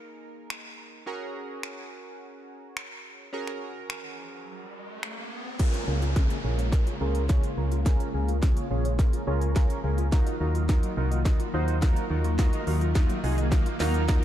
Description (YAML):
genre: dance-pop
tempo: 106 BPM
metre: 4/4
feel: straight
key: Db major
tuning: A4 = 440 Hz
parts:
  - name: chorused retro synth keys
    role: accompaniment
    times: 0.0-14.2 s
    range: Bb3 to Db6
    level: -34 LUFS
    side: right 2 dB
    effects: sidechain pumping, low-pass filter
  - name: house drum kit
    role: drums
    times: 0.5-14.2 s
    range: crash cymbal, finger snaps, hi-hat, kick drum, snare drum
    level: -26 LUFS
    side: equal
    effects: none
  - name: riser and downlifter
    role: sound effects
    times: 4.2-14.2 s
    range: none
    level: -40 LUFS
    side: equal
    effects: none
  - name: soft string machine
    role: sustained chords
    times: 5.6-14.2 s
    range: Db3 to F4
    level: -34 LUFS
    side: left 2 dB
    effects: ensemble chorus, sidechain pumping, low-pass filter
  - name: mallet-like synth pluck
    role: arpeggios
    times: 5.6-14.2 s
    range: Gb3 to F5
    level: -41 LUFS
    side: left 4 dB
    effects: none
  - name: solid FM bass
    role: bass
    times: 5.9-14.2 s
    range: Bb1 to Eb2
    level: -27 LUFS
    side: equal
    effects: sidechain pumping
room: little or no reverb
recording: dark, warm production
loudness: -24 LUFS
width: side -12 dB against mid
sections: 0.0-5.6 A section; 5.6-14.2 B section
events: riser 4.2-5.6, 5.6-14.2; build-up 5.6-14.2; drum fill 5.6-14.2; filter sweep 5.6-14.2; synth keys fill 13.8-14.2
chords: 0.0 Absus2; 1.1 Gbadd9; 5.6 Db6; 10.1 Ebmadd9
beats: 0.50 | 1.07 1.63 2.20 2.77 | 3.33 3.90 4.46 5.03 | 5.60 6.16 6.73 7.29 | 7.86 8.43 8.99 9.56 | 10.12 10.69 11.26 11.82 | 12.39 12.95 13.52 14.09